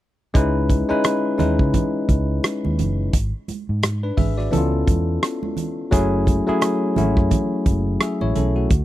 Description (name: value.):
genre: lush 1970s-style soul.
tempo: 86 BPM.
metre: 4/4.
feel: swing 58% on 16ths.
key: C# minor.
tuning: A4 = 441 Hz.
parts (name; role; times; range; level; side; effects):
bell-like tine electric piano; accompaniment; 0.3-8.8 s; E3 to E5; -21 LUFS; left 2 dB; none.
warm soul drum kit; drums; 0.3-8.8 s; hi-hat, kick drum, rim click; -20 LUFS; equal; none.
vintage muted fingered electric bass; bass; 0.4-8.8 s; F#1 to C#3; -22 LUFS; equal; none.
congas; percussion; 0.4-8.5 s; none; -29 LUFS; right 7 dB; none.
room: small room ambience.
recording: dry, close 1970s-style studio recording.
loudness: -18 LUFS.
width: side -14 dB against mid.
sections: 0.3-8.8 A section.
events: none.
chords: 0.3 C#m9; 3.1 G#dim; 4.5 C#7alt; 5.9 F#m9.